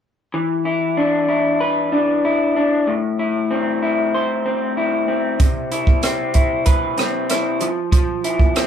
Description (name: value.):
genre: indie pop, bedroom pop.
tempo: 95 BPM.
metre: 4/4.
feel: straight.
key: unclear.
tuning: A4 = 439 Hz.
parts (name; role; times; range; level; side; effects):
electric guitar through a small old amp; accompaniment; 0.3-8.7 s; A2 to C5; -18 LUFS; left 2 dB; vibrato effect.
compact cocktail drum kit; drums; 5.4-8.7 s; hi-hat, kick drum, rim click; -17 LUFS; right 1 dB; none.
room: moderate studio reverb, RT60 0.5 s.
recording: band playing live in one room.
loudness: -16 LUFS.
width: side -8 dB against mid.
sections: 0.3-8.7 A section.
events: none.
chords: 0.3 E5; 2.9 Am; 5.4 Cmaj7; 7.6 F5.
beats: | 0.34 0.98 1.61 2.24 | 2.87 3.50 4.13 4.76 | 5.40 6.03 6.66 7.29 | 7.92 8.55.